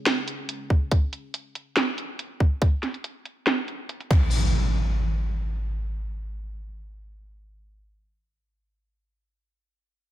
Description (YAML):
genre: deep dubstep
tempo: 141 BPM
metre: 4/4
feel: half-time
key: unclear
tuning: A4 = 439 Hz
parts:
  - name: dark analog pad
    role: sustained chords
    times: 0.0-1.0 s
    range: C#4 to G#4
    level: -43 LUFS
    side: equal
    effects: chorus, phaser
  - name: garage drum kit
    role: drums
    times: 0.1-4.2 s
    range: crash cymbal, hi-hat, snare drum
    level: -26 LUFS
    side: right 1 dB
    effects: overdrive, low-pass filter on hats, low-pass filter on snare, low-pass filter on cymbals
  - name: electronic kick drum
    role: drums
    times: 0.7-4.2 s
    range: none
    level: -20 LUFS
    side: equal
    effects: none
  - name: impact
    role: sound effects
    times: 4.1-7.8 s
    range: none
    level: -25 LUFS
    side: equal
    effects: none
room: light reverb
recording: none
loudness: -23 LUFS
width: side -13 dB against mid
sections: 0.0-4.3 A section; 4.3-7.7 B section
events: none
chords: 0.0 C#5; 4.1 N.C.